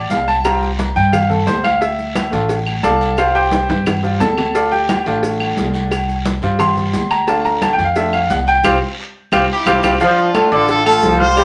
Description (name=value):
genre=latin, salsa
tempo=176 BPM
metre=4/4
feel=straight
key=D minor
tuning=A4 = 440 Hz
part: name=bright upright piano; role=accompaniment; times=0.0-11.4 s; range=F3 to F6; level=-18 LUFS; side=equal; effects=none
part: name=upright bass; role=bass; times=0.0-11.4 s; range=A1 to G2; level=-24 LUFS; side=equal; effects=none
part: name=congas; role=percussion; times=0.1-11.4 s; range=none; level=-27 LUFS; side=equal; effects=none
part: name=cowbell and bongos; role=percussion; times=0.1-11.4 s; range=none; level=-27 LUFS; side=equal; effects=none
part: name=guiro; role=percussion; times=0.1-9.9 s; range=none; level=-35 LUFS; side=equal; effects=none
part: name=maracas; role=percussion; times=0.1-11.4 s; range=none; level=-43 LUFS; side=equal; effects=none
part: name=timbales and agogo bells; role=percussion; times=0.1-11.4 s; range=none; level=-28 LUFS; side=equal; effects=none
part: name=claves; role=percussion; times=0.4-11.4 s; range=none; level=-28 LUFS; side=equal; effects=none
part: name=brilliant horn section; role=melody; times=9.5-11.4 s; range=D4 to C5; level=-18 LUFS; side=equal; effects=none
part: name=mellow trombone section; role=second line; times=10.0-11.4 s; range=D3 to G3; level=-20 LUFS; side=equal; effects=none
room=wet studio reverb, RT60 0.6 s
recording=none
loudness=-16 LUFS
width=mono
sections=0.0-10.0 A section; 10.0-11.4 B section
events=upright piano solo 0.0-10.0; drum fill 3.5-4.5, 9.0-10.0; band accent 8.6-10.0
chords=0.4 Csus4; 1.8 Dm; 3.2 Csus4; 4.5 Dm; 5.9 Csus4; 7.3 Dm; 8.6 Csus4; 10.0 Dm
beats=0.11 | 0.45 0.79 1.13 1.47 | 1.82 2.16 2.50 2.84 | 3.18 3.52 3.87 4.21 | 4.55 4.89 5.23 5.57 | 5.92 6.26 6.60 6.94 | 7.28 7.62 7.96 8.30 | 8.64 8.99 9.33 9.67 | 10.01 10.35 10.69 11.03 | 11.37